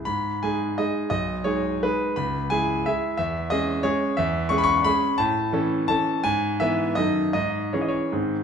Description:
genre	classical, romantic triple-time dance for piano with dotted rhythms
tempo	143-189 BPM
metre	3/4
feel	rubato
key	G# minor, C# minor from 4.2 s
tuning	A4 = 439 Hz
part	clear concert grand piano	solo	0.0-8.4 s	B1 to C#6	-21 LUFS	equal	none
room	wet recital hall reverb, RT60 1.6 s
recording	minimal, uncompressed stereo recording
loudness	-21 LUFS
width	side -7 dB against mid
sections	0.1-8.4 A section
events	none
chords	0.1 G#m; 1.1 G#m/B; 2.2 C#m7; 3.2 C#m/E; 5.2 A; 6.2 E/G#; 7.0 D#dim/F#; 7.3 C#m/G#

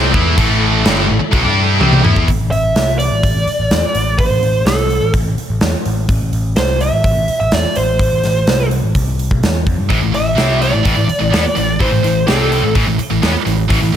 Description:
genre	hard rock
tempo	126 BPM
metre	4/4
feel	straight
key	A minor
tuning	A4 = 435 Hz
part	overdriven tonewheel organ	sustained chords	0.0-2.2 s	A3 to A4	-28 LUFS	equal	slow rotary speaker, chorus vibrato
part	distorted electric guitar	riff	0.0-2.3, 9.9-14.0 s	G2 to G4	-19 LUFS	left 12 dB	overdrive
part	high-gain distorted guitar	riff	0.0-2.3 s	G2 to G4	-20 LUFS	right 1 dB	distortion
part	scooped high-gain guitar	riff	0.0-2.3, 9.9-14.0 s	G2 to G4	-19 LUFS	right 11 dB	distortion
part	overdriven picked electric bass	bass	0.0-14.0 s	G1 to G2	-17 LUFS	equal	none
part	big rock drum kit	drums	0.1-13.8 s	crash cymbal, hi-hat, kick drum, snare drum, toms	-17 LUFS	equal	none
part	biting lead guitar	melody	2.5-12.7 s	A4 to E5	-17 LUFS	right 1 dB	overdrive, slapback echo
room	small room ambience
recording	none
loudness	-12 LUFS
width	side -10 dB against mid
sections	0.0-2.3 A section; 2.3-14.0 B section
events	drum fill 1.8-2.3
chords	0.0 Am

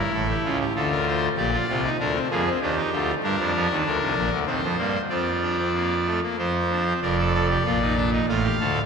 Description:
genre	classical, baroque-style 3-part fugue for pipe organ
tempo	96 BPM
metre	3/4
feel	straight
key	Bb major from 3.2 s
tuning	A4 = 440 Hz
part	pipe organ, trumpet	solo	0.0-8.8 s	F1 to F5	-21 LUFS	equal	none
room	wet church reverb, RT60 3.5 s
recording	none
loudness	-21 LUFS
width	side -6 dB against mid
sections	0.0-7.0 A section; 7.0-8.9 B section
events	none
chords	0.0 A7; 0.8 Dm; 1.4 Bb7; 2.6 Eb; 3.2 Gm; 4.5 Cm/Eb; 5.1 Fsus4; 6.4 F5; 7.0 Bb/F; 8.3 Dm/A

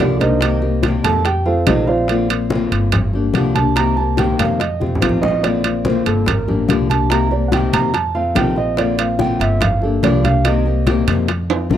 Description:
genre	latin, Cuban son and guajira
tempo	144 BPM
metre	4/4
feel	straight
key	unclear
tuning	A4 = 435 Hz
part	nylon-string guitar	accompaniment	0.0-11.8 s	C3 to G4	-20 LUFS	left 5 dB	none
part	dark grand piano	arpeggios	0.0-11.7 s	D4 to Bb5	-20 LUFS	right 5 dB	none
part	upright bass	bass	0.0-11.8 s	G1 to F2	-20 LUFS	equal	none
part	congas	percussion	0.0-11.8 s	none	-23 LUFS	left 1 dB	none
part	timbales	percussion	0.0-11.6 s	none	-22 LUFS	right 9 dB	none
part	bongos	percussion	0.2-11.8 s	none	-23 LUFS	left 7 dB	none
room	small room ambience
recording	dry, close 1970s-style studio recording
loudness	-14 LUFS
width	side -10 dB against mid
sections	0.0-11.8 A section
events	grand piano solo 0.0-11.8; drum fill 4.8-5.4, 11.5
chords	0.4 Cm7; 1.2 F7; 2.1 Gm7; 3.8 Cm7; 4.6 F7; 5.4 Gm7; 7.1 Cm7; 7.9 F7; 8.8 Gm7; 10.4 Cm7

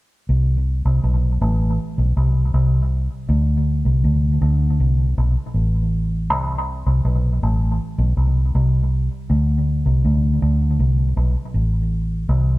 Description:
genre	reggae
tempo	80 BPM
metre	4/4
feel	straight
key	unclear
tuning	A4 = 438 Hz
part	vintage muted fingered electric bass	solo	0.3-12.6 s	A1 to D2	-16 LUFS	equal	analog delay
room	light reverb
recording	echo-heavy mix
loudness	-17 LUFS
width	side -19 dB against mid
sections	0.3-12.3 A section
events	none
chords	none

